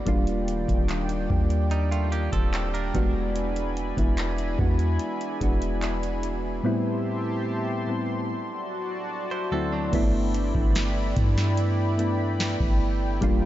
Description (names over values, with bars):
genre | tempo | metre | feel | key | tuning
contemporary R&B | 73 BPM | 4/4 | straight | G major | A4 = 440 Hz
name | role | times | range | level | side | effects
soft electric-piano-like synth keys | accompaniment | 0.0-13.5 s | D2 to G4 | -28 LUFS | equal | chorus
chorused pulse-width pad | sustained chords | 0.0-13.5 s | Eb3 to C6 | -32 LUFS | equal | sidechain pumping
soft 808-style bass | bass | 0.0-13.5 s | Eb1 to G2 | -26 LUFS | equal | none
booming analog drum machine | drums | 0.1-13.4 s | crash cymbal, handclaps, hi-hat, kick drum, snare drum | -27 LUFS | equal | none
direct-recorded clean electric guitar | arpeggios | 1.7-3.1, 9.3-10.1 s | F#3 to C5 | -37 LUFS | right 4 dB | tape echo
room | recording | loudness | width
light reverb, digital ambience | nothing above 7.7 kHz | -23 LUFS | side -14 dB against mid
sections
0.0-9.9 A section; 9.9-13.5 B section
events
none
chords
0.1 Ebmaj7; 2.9 E7; 6.6 Am7; 8.3 D7; 9.9 G6